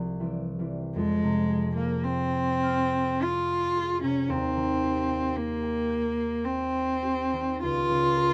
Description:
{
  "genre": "classical, romantic duo for cello and harp",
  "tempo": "48-58 BPM",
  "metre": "3/4",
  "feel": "rubato",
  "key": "F minor",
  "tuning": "A4 = 440 Hz",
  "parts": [
    { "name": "concert harp", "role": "accompaniment", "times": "0.0-8.3 s", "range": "C2 to C7", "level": "-33 LUFS", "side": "equal", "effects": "none" },
    { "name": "warm cello", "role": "melody", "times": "1.0-8.3 s", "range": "Ab3 to F4", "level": "-28 LUFS", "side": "equal", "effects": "none" }
  ],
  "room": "light reverb",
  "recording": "none",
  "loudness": "-27 LUFS",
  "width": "mono",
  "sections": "1.0-8.3 A section",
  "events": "none",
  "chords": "0.0 C; 1.0 Fm; 4.3 Cm/Eb; 7.6 Bbm/Db"
}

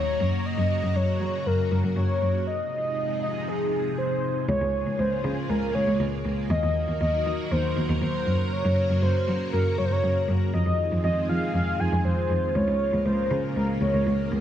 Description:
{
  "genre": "synth-pop",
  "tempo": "119 BPM",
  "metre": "4/4",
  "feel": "straight",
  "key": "Db major",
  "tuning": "A4 = 440 Hz",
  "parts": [
    { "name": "warm velvety synth lead", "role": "melody", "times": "0.0-14.3 s", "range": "Ab4 to Ab5", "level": "-27 LUFS", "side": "equal", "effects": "chorus" },
    { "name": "string machine, full ensemble", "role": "sustained chords", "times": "0.0-14.4 s", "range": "C3 to Bb4", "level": "-30 LUFS", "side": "equal", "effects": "phaser, ensemble chorus" },
    { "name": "warm cello", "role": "bass", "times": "0.0-14.4 s", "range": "Db2 to Gb3", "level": "-25 LUFS", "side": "equal", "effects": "none" }
  ],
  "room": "light reverb, small room ambience",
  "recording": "dark, warm production",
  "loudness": "-22 LUFS",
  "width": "side -10 dB against mid",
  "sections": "0.0-4.5 A section; 4.5-14.4 B section",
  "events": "break 2.5-4.5",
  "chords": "0.2 Gb; 2.5 Fm7; 4.5 Db6; 6.5 Ebm; 8.3 Gb; 10.5 Fm7; 12.6 Db6"
}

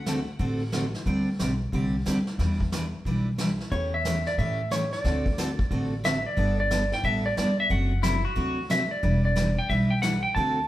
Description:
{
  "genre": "country, western swing",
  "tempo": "181 BPM",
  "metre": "4/4",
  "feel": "swing 64% on 8ths",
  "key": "unclear",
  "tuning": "A4 = 440 Hz",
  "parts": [
    { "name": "clean lap steel guitar", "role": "melody", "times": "0.0-0.9, 3.7-10.7 s", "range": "C#5 to A5", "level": "-28 LUFS", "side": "equal", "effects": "none" },
    { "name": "upright bass", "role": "bass", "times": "0.0-10.7 s", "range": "E1 to A2", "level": "-29 LUFS", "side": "equal", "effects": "none" },
    { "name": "picked steel-string acoustic guitar", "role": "accompaniment", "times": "0.1-10.6 s", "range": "C3 to B4", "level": "-28 LUFS", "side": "equal", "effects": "none" },
    { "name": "vintage brush drum kit", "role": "drums", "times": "0.1-10.7 s", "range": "brushed snare drum, hi-hat, kick drum, snare drum", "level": "-32 LUFS", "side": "equal", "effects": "none" },
    { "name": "pedal steel guitar", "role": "second line", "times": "8.0-8.6 s", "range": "E4 to F#4", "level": "-30 LUFS", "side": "left 4 dB", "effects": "none" }
  ],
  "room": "wet stone room reverb, RT60 1.1 s",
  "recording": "band playing live in one room",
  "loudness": "-23 LUFS",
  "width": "side -14 dB against mid",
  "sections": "0.0-10.7 A section",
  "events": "none",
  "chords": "0.0 D7; 1.1 D7sus4; 2.4 Em7; 3.7 A7/E; 5.0 D7; 6.4 Gadd9; 7.7 D7/F#; 9.0 Em7"
}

